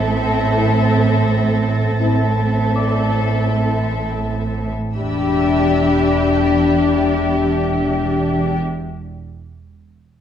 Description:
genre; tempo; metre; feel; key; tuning
cinematic, suspense film score; 83 BPM; 4/4; straight; E minor; A4 = 436 Hz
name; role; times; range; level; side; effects
muted studio violin section; melody; 0.0-8.6 s; E5; -28 LUFS; equal; none
muted studio violin section; second line; 0.0-8.6 s; G4 to A4; -23 LUFS; left 2 dB; none
muted studio viola section; accompaniment; 0.0-8.6 s; C4 to D4; -24 LUFS; right 1 dB; none
muted studio cello section; bass; 0.0-8.6 s; E2 to A2; -23 LUFS; right 2 dB; none
muted studio double bass section; bass; 0.0-8.6 s; E1 to A1; -21 LUFS; right 3 dB; none
muted studio violin section; texture; 0.0-7.4 s; B5 to A#6; -32 LUFS; equal; none
small celesta; texture; 0.0-5.0 s; D5 to D6; -30 LUFS; left 3 dB; none
dark French horn section; sustained chords; 0.6-8.6 s; C4 to G4; -19 LUFS; left 6 dB; none
room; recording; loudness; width
moderate scoring stage reverb, RT60 1.4 s; dark, warm production; -15 LUFS; side -9 dB against mid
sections
0.0-5.0 A section; 5.0-7.8 B section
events
none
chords
0.0 Am; 5.0 Em7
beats
0.55 1.28 | 2.00 2.74 3.48 4.22 | 4.96 5.67 6.39 7.11

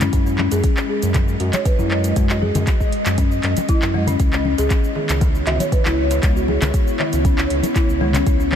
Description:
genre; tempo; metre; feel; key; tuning
afro house; 118 BPM; 4/4; straight; C# minor; A4 = 440 Hz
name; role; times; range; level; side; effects
ethereal airy pad; sustained chords; 0.0-8.6 s; G#3 to D#5; -24 LUFS; equal; ensemble chorus, built-in reverb, sidechain pumping
folk marimba with soft mallets; arpeggios; 0.0-8.6 s; G#3 to C#5; -23 LUFS; left 2 dB; sidechain pumping, ping-pong delay
round analog bass; bass; 0.0-8.6 s; C#2 to F#2; -21 LUFS; equal; sidechain pumping
afro-pop drum kit; drums; 0.0-8.6 s; handclaps, hi-hat, shaker; -26 LUFS; equal; overdrive
congas; percussion; 0.0-8.6 s; none; -27 LUFS; left 4 dB; none
electronic kick drum; drums; 0.1-8.4 s; none; -18 LUFS; equal; overdrive
darbuka; percussion; 4.6-8.1 s; none; -29 LUFS; right 3 dB; none
room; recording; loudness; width
light reverb, small room ambience; none; -16 LUFS; side -9 dB against mid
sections
0.0-8.6 A section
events
none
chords
0.0 F#sus2; 4.2 C#m7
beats
| 0.13 0.64 1.15 1.66 | 2.16 2.67 3.18 3.69 | 4.20 4.71 5.21 5.72 | 6.23 6.74 7.25 7.76 | 8.27

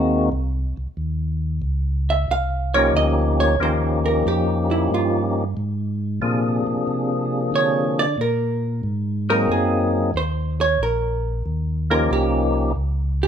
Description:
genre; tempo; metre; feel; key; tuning
jazz; 92 BPM; 4/4; swing 69% on 8ths; Eb mixolydian; A4 = 439 Hz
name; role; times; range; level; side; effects
percussive tonewheel organ; melody; 0.0-12.7 s; C3 to Ab4; -21 LUFS; left 2 dB; slow rotary speaker, overdrive
vintage hollow-body jazz guitar; accompaniment; 0.0-13.3 s; C4 to F5; -23 LUFS; right 4 dB; none
mellow tonewheel organ; bass; 0.0-13.3 s; Bb1 to D3; -23 LUFS; equal; overdrive, chorus vibrato, slow rotary speaker
room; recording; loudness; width
light reverb; minimal, uncompressed stereo recording; -19 LUFS; side -8 dB against mid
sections
0.0-13.3 A section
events
hollow-body jazz guitar solo 0.0-13.3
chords
0.0 Ab9; 1.0 Eb9; 6.2 Bb9; 8.8 Ab9; 11.5 Eb9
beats
0.32 | 0.98 1.63 2.29 2.94 | 3.60 4.25 4.91 5.56 | 6.22 6.88 7.53 8.19 | 8.84 9.50 10.15 10.80 | 11.46 12.11 12.77

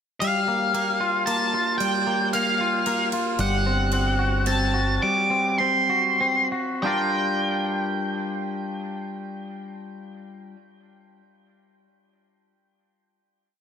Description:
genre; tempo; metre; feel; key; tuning
post-rock; 91-114 BPM; 3/4; straight; G minor; A4 = 440 Hz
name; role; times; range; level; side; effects
octave-fuzz lead guitar; melody; 0.2-10.5 s; F5 to D6; -24 LUFS; equal; distortion, tape echo
twangy electric guitar; arpeggios; 0.2-10.6 s; G3 to D5; -26 LUFS; left 1 dB; spring reverb, tape echo
ride cymbal; drums; 0.2-4.6 s; none; -35 LUFS; right 6 dB; none
growling fingered electric bass; bass; 3.4-5.0 s; G1; -24 LUFS; equal; overdrive
room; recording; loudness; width
light reverb, small room ambience; none; -21 LUFS; side -8 dB against mid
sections
0.2-6.8 A section; 6.8-10.8 final chord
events
slowing down 3.4-6.8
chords
0.2 Gm7; 3.4 D7/G (rootless); 6.8 Gm7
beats
| 0.22 0.75 1.28 | 1.81 2.34 2.87 | 3.39 3.92 4.46 | 5.02 5.59 6.20 | 6.83 7.49 8.15 | 8.81 9.47 10.13

